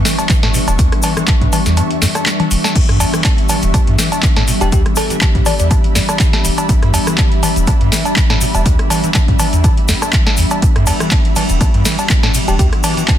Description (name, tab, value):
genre	acid house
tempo	122 BPM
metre	4/4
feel	swing 54% on 16ths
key	E dorian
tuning	A4 = 436 Hz
part	warbly tape-like pad	sustained chords	0.0-13.2 s	E3 to B4	-23 LUFS	left 2 dB	chorus, built-in reverb, sidechain pumping
part	overdriven acid bass	riff	0.0-13.1 s	E1 to E3	-18 LUFS	equal	wide subtle chorus, sidechain pumping
part	ethereal airy pad	texture	0.0-13.2 s	G3 to D6	-21 LUFS	equal	ensemble chorus, built-in reverb, sidechain pumping
part	booming analog drum machine	drums	0.1-13.2 s	cowbell, crash cymbal, handclaps, hi-hat, ride cymbal, rim click, snare drum, toms	-18 LUFS	equal	studio reverb
part	egg shaker	percussion	0.1-13.2 s	none	-24 LUFS	left 4 dB	none
part	electronic kick drum	drums	0.3-13.2 s	none	-14 LUFS	equal	studio reverb
part	bell-like FM electric piano	melody	4.6-5.7, 12.5-12.7 s	G4 to D5	-23 LUFS	left 3 dB	chorus, phaser, digital delay
room	light reverb, digital ambience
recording	dense, heavily limited modern master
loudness	-11 LUFS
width	side -11 dB against mid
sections	0.0-13.2 A section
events	kick drops out 1.8-2.8; drum fill 2.3-2.8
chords	0.0 Em7